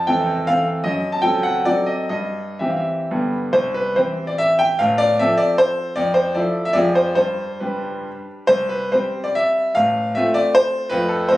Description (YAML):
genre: classical, romantic triple-time dance for piano with dotted rhythms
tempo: 116-164 BPM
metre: 3/4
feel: rubato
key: C major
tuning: A4 = 440 Hz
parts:
  - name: bright concert grand piano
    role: solo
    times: 0.0-11.4 s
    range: A1 to A5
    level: -17 LUFS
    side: equal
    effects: none
room: light reverb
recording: recorded on a phone in the room, studio reverb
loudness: -17 LUFS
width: side -16 dB against mid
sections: 0.0-3.5 A section; 3.5-11.4 B section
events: none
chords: 0.0 Fmaj7; 0.8 F#dim; 2.1 C/G; 3.1 G; 3.5 C; 4.8 F/A; 6.0 Fmaj7; 6.8 Fm; 7.2 G; 8.5 C; 9.7 F/A; 10.9 F